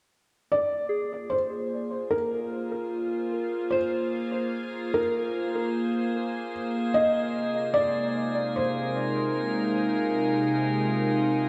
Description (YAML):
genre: ambient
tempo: 74 BPM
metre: 4/4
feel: straight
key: unclear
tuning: A4 = 439 Hz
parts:
  - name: felt-muted upright piano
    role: melody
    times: 0.5-11.5 s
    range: Bb4 to Eb5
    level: -30 LUFS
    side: equal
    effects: analog delay
  - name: evolving wavetable pad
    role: sustained chords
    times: 1.2-11.5 s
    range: C3 to F5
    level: -30 LUFS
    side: equal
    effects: chorus, built-in reverb
  - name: overtone-sweeping drone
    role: drone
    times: 4.6-11.5 s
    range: Bb3 to F4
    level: -39 LUFS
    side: equal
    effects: chorus, built-in reverb, phaser
  - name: drifting glass-harmonics texture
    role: texture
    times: 1.7-11.5 s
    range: Ab4 to Ab5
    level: -39 LUFS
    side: equal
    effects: chorus, built-in reverb
  - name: soft synth bell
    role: arpeggios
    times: 0.9-7.0 s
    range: Ab4 to C5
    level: -38 LUFS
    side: equal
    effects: chorus, phaser, analog delay
room: wet plate reverb, RT60 2.9 s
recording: echo-heavy mix, cassette tape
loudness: -27 LUFS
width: mono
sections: 0.5-11.5 A section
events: fade-in on synth drone 0.5-11.5; fade-in on synth texture 0.5-11.5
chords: 0.5 Bb7(no3); 7.0 Ab/C